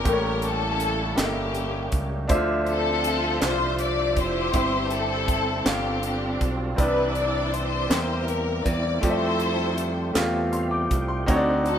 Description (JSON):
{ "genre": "slow gospel", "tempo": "53 BPM (dotted quarters)", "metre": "6/8", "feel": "straight", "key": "C major", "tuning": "A4 = 440 Hz", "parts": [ { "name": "warm studio string section", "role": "melody", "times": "0.0-11.8 s", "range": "Bb3 to D5", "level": "-26 LUFS", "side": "left 3 dB", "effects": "none" }, { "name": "clear baby grand piano", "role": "accompaniment", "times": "0.0-11.8 s", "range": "G2 to D6", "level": "-27 LUFS", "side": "equal", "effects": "none" }, { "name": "modern bright fingered electric bass", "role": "bass", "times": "0.0-11.8 s", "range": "F1 to F2", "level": "-29 LUFS", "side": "right 1 dB", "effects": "none" }, { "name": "percussive tonewheel organ", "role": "sustained chords", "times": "0.1-11.8 s", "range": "D3 to G5", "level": "-32 LUFS", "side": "right 3 dB", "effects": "slow rotary speaker, overdrive, chorus vibrato" }, { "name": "crisp fusion drum kit", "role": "drums", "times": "0.1-11.8 s", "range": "hi-hat, kick drum, snare drum", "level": "-27 LUFS", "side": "right 1 dB", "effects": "none" }, { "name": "group handclap", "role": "percussion", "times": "1.2-10.5 s", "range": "none", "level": "-35 LUFS", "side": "right 5 dB", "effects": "none" } ], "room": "moderate stone room reverb, RT60 1.2 s", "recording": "band playing live in one room", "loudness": "-22 LUFS", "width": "side -9 dB against mid", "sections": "0.0-11.8 A section", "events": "tonewheel organ fill 10.2-11.3", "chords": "0.1 A7b9; 2.3 Dm9; 4.5 C/G; 5.7 G9sus4; 6.8 Cmaj9; 7.9 C7/E; 9.0 Fmaj9; 11.3 D7b9" }